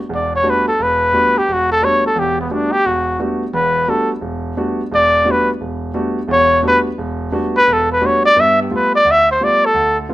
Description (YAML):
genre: jazz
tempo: 174 BPM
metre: 4/4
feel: swing 63% on 8ths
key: A mixolydian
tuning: A4 = 441 Hz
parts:
  - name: breathy trumpet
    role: melody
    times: 0.1-10.0 s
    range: B3 to E5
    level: -13 LUFS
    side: equal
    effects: none
  - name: warm concert grand piano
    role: accompaniment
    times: 0.1-10.1 s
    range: E1 to F#4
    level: -20 LUFS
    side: right 1 dB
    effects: none
room: moderate studio reverb, RT60 0.6 s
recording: rough home demo mix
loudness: -13 LUFS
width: side -16 dB against mid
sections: 0.0-8.4 A section; 8.4-10.1 A section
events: trumpet solo 0.0-10.1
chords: 0.0 A13sus4; 8.4 G9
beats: | 0.09 0.43 0.78 1.12 | 1.47 1.81 2.16 2.50 | 2.85 3.19 3.54 3.88 | 4.22 4.57 4.92 5.26 | 5.61 5.95 6.29 6.64 | 6.99 7.33 7.67 8.02 | 8.37 8.71 9.06 9.40 | 9.75 10.09